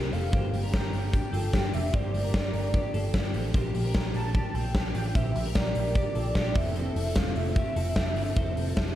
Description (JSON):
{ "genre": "jangly indie pop", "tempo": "149 BPM", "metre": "4/4", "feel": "straight", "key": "C mixolydian", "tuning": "A4 = 440 Hz", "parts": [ { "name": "warm velvety synth lead", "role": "melody", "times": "0.0-9.0 s", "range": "Bb4 to A5", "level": "-35 LUFS", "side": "right 1 dB", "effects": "chorus" }, { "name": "clean electric guitar", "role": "accompaniment", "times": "0.0-9.0 s", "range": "G2 to A4", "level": "-37 LUFS", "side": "right 3 dB", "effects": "ensemble chorus" }, { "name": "twelve-string electric guitar", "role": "arpeggios", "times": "0.0-9.0 s", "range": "C4 to C5", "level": "-38 LUFS", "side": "left 4 dB", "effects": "lush chorus" }, { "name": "vintage muted picked electric bass", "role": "bass", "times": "0.0-8.9 s", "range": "F1 to Bb1", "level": "-30 LUFS", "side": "equal", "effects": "none" }, { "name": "big rock drum kit", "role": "drums", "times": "0.1-8.9 s", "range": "hi-hat, kick drum, snare drum", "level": "-28 LUFS", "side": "equal", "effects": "none" } ], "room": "moderate lush hall reverb, RT60 2.0 s", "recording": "dreamy mix soaked in reverb, cassette tape", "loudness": "-25 LUFS", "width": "side -13 dB against mid", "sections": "0.0-9.0 A section", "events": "none", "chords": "0.0 C7sus4; 3.5 Bb6; 6.6 Fmaj7", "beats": "| 0.33 0.73 1.14 1.54 | 1.94 2.34 2.74 3.14 | 3.54 3.95 4.35 4.75 | 5.15 5.55 5.96 6.36 | 6.76 7.16 7.56 7.97 | 8.37 8.77" }